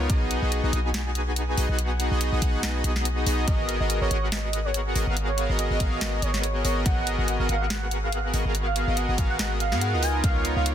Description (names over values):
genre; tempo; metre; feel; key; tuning
future bass; 142 BPM; 4/4; swing 55% on 16ths, half-time; G# dorian; A4 = 440 Hz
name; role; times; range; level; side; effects
soft supersaw; riff; 0.0-10.7 s; B3 to G#5; -28 LUFS; equal; sidechain pumping, ping-pong delay
warm 808-style bass; bass; 0.0-10.7 s; G#1 to G#2; -26 LUFS; equal; sidechain pumping
electronic kick drum; drums; 0.1-10.3 s; none; -25 LUFS; equal; none
trap drum kit; drums; 0.1-10.7 s; hi-hat, snare drum; -32 LUFS; equal; none
warm velvety synth lead; melody; 3.5-10.7 s; C#5 to G#5; -30 LUFS; right 2 dB; chorus, sidechain pumping, tape echo
room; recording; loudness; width
digital ambience; dense, heavily limited modern master; -22 LUFS; side -10 dB against mid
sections
0.0-10.7 A section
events
none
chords
0.1 B6; 3.5 G#m9; 10.0 C#13